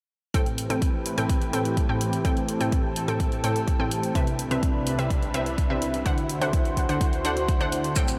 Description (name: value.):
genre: progressive house.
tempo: 126 BPM.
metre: 4/4.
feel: straight.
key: A dorian.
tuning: A4 = 440 Hz.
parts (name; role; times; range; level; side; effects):
lush unison pad; sustained chords; 0.3-8.2 s; C2 to C5; -31 LUFS; equal; chorus, sidechain pumping.
unison pluck; stabs; 0.3-8.2 s; A2 to G5; -30 LUFS; equal; vintage 12-bit sampler grit, sidechain pumping, delay.
electronic hi-hat; drums; 0.3-8.2 s; none; -38 LUFS; equal; none.
electronic kick drum; drums; 0.3-8.1 s; none; -27 LUFS; equal; none.
maracas; percussion; 8.0-8.2 s; none; -33 LUFS; equal; none.
room: wet cathedral reverb, RT60 6.5 s.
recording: dreamy mix soaked in reverb.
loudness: -25 LUFS.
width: mono.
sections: 0.3-8.2 A section.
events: none.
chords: 0.3 Am7; 4.2 Cmaj7; 6.1 D7.